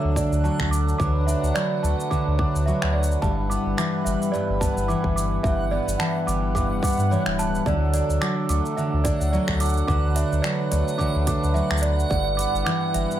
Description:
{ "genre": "folktronica", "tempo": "108 BPM", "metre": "4/4", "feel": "swing 56% on 16ths", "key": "D major", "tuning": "A4 = 442 Hz", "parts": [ { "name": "worn celesta", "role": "second line", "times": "0.0-13.2 s", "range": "C#5 to D6", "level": "-29 LUFS", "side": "right 3 dB", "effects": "tape echo" }, { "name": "hand-pumped harmonium", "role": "sustained chords", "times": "0.0-13.2 s", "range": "F#3 to B4", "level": "-31 LUFS", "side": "equal", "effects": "none" }, { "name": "fingerpicked twelve-string acoustic guitar", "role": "arpeggios", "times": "0.0-13.2 s", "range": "G2 to D4", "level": "-25 LUFS", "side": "equal", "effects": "tape echo" }, { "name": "warm sub bass", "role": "bass", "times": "0.0-13.1 s", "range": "D1 to G2", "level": "-24 LUFS", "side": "equal", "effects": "none" }, { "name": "backwards swelling texture", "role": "texture", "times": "0.0-13.2 s", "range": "F#5", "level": "-33 LUFS", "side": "right 4 dB", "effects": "built-in reverb" }, { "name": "electronic kick drum", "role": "drums", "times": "0.2-12.2 s", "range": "none", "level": "-27 LUFS", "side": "equal", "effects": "none" }, { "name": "organic electronic drum kit", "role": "drums", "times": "0.2-13.2 s", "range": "cabasa, finger snaps, hi-hat", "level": "-31 LUFS", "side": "equal", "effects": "none" } ], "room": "light reverb, digital ambience", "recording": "none", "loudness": "-20 LUFS", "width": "side -11 dB against mid", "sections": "0.0-13.2 A section", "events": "none", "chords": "0.0 D; 3.2 G6; 7.7 D; 12.1 G6", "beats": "0.45 | 1.00 1.56 2.11 2.67 | 3.22 3.78 4.33 4.89 | 5.45 6.00 6.56 7.11 | 7.67 8.22 8.78 9.33 | 9.89 10.45 11.00 11.56 | 12.11 12.67" }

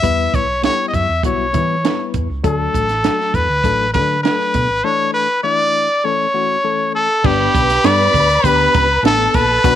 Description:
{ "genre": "uptempo 1960s-style soul", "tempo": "100 BPM", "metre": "4/4", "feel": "straight", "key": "unclear", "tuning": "A4 = 440 Hz", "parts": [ { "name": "brilliant trumpet", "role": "melody", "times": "0.0-9.8 s", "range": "G4 to E5", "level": "-15 LUFS", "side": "left 1 dB", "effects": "none" }, { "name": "barky reed electric piano", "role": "accompaniment", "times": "0.0-9.8 s", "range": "E3 to B4", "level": "-22 LUFS", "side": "left 11 dB", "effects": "overdrive, fast tremolo" }, { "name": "hollow-body short-scale fingered electric bass", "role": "bass", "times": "0.0-9.8 s", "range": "G1 to E3", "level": "-21 LUFS", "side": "right 1 dB", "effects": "none" }, { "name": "compact cocktail drum kit", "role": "drums", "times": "0.0-9.8 s", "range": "crash cymbal, hi-hat, kick drum, snare drum", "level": "-19 LUFS", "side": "right 5 dB", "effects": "none" }, { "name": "warm studio string section", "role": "second line", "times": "7.2-9.8 s", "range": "A4 to B5", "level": "-20 LUFS", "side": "equal", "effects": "none" } ], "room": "light reverb, studio reverb", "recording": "1960s-style stereo", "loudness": "-13 LUFS", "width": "side -11 dB against mid", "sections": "0.0-7.2 A section; 7.2-9.8 B section", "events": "none", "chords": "0.0 Em; 2.4 D; 4.8 Asus4; 6.0 A; 7.2 G", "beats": "| 0.03 0.64 1.24 1.84 | 2.44 3.04 3.64 4.25 | 4.85 5.45 6.05 6.65 | 7.25 7.85 8.45 9.05 | 9.64" }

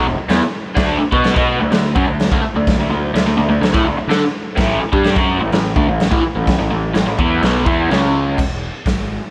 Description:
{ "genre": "garage rock duo or trio", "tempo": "126 BPM", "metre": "4/4", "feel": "straight", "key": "unclear", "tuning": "A4 = 440 Hz", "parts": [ { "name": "raw garage guitar", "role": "riff", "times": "0.0-8.4 s", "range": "E2 to B4", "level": "-19 LUFS", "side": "equal", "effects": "overdrive, phaser" }, { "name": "fuzz picked electric bass", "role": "bass", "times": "0.0-9.2 s", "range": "E1 to D3", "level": "-25 LUFS", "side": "equal", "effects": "overdrive" }, { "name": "raw garage drum kit", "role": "drums", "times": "0.3-9.0 s", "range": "crash cymbal, hi-hat, kick drum, snare drum", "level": "-21 LUFS", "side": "equal", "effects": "none" } ], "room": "light reverb", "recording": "none", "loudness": "-16 LUFS", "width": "mono", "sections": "0.0-8.4 A section", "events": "none", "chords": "0.0 E5; 0.8 D5; 4.6 A5; 7.9 C#5; 8.4 E", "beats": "0.30 | 0.77 1.25 1.72 2.20 | 2.67 3.15 3.62 4.10 | 4.57 5.05 5.52 6.00 | 6.47 6.95 7.42 7.90 | 8.38 8.85" }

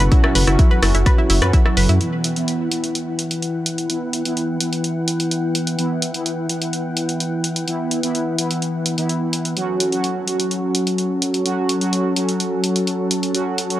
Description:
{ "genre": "melodic techno", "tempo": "127 BPM", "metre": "4/4", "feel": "straight", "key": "E dorian", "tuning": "A4 = 440 Hz", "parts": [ { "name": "warm analog pad", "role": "sustained chords", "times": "0.0-13.8 s", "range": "F#3 to C#6", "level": "-24 LUFS", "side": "left 1 dB", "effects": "lush chorus, sidechain pumping" }, { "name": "analog pluck", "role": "arpeggios", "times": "0.0-2.0 s", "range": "E4 to B4", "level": "-24 LUFS", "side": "equal", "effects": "chorus, sidechain pumping, tape echo" }, { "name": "analog synth brass", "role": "stabs", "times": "0.0-13.8 s", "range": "E3 to F#4", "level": "-22 LUFS", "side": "right 1 dB", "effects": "chorus, sidechain pumping, tape echo" }, { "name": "dark detuned saw bass", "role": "bass", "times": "0.0-2.0 s", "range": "F#1 to F#2", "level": "-17 LUFS", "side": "equal", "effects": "sidechain pumping" }, { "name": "bowed-like drone", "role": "drone", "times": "0.0-2.1 s", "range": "E2 to B2", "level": "-36 LUFS", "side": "equal", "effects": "none" }, { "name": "punchy analog drum machine", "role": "drums", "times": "0.0-13.8 s", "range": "hi-hat, rim click", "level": "-22 LUFS", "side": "equal", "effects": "none" }, { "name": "electronic kick drum", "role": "drums", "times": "0.1-1.6 s", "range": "none", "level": "-14 LUFS", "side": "equal", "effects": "none" } ], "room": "light reverb", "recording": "dry, gritty hardware recording", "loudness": "-17 LUFS", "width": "side -13 dB against mid", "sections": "0.0-2.0 A section; 2.0-13.8 B section", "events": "none", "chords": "0.0 F#m7; 2.0 Em; 9.6 F#m", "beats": "| 0.12 0.59 1.06 1.53 | 2.01 2.48 2.95 3.42 | 3.90 4.37 4.84 5.31 | 5.79 6.26 6.73 7.20 | 7.68 8.15 8.62 9.09 | 9.57 10.04 10.51 10.98 | 11.46 11.93 12.40 12.87 | 13.35" }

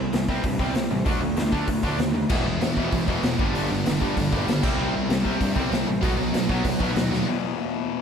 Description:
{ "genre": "punk rock", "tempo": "193 BPM", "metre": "4/4", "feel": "straight", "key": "unclear", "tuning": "A4 = 440 Hz", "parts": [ { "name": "distorted electric guitar", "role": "riff", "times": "0.0-8.0 s", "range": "E2 to D4", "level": "-28 LUFS", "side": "left 9 dB", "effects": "overdrive" }, { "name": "distorted electric guitar", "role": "riff", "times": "0.0-7.3 s", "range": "E2 to D4", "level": "-28 LUFS", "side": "right 8 dB", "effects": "distortion, slapback echo" }, { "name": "fuzz picked electric bass", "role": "bass", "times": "0.0-7.2 s", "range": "E1 to G2", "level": "-30 LUFS", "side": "equal", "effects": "overdrive" }, { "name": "raw garage drum kit", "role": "drums", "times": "0.1-7.2 s", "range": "crash cymbal, hi-hat, kick drum, snare drum", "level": "-26 LUFS", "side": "equal", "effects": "none" }, { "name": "high-gain distorted guitar", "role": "riff", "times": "2.3-7.3 s", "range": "G2 to E4", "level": "-29 LUFS", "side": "equal", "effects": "distortion, slapback echo" } ], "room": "moderate concert hall reverb, RT60 1.7 s, small room ambience", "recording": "big arena sound", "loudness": "-21 LUFS", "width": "side -7 dB against mid", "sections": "0.0-7.3 A section", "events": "drum fill 7.1", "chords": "0.0 C5; 1.1 D5; 2.3 E; 3.4 G; 4.6 C; 6.0 B; 7.3 E5", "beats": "0.13 0.44 0.75 | 1.06 1.37 1.68 1.99 | 2.30 2.61 2.92 3.23 | 3.55 3.86 4.17 4.48 | 4.79 5.10 5.41 5.72 | 6.03 6.34 6.65 6.96 | 7.27 7.58 7.89" }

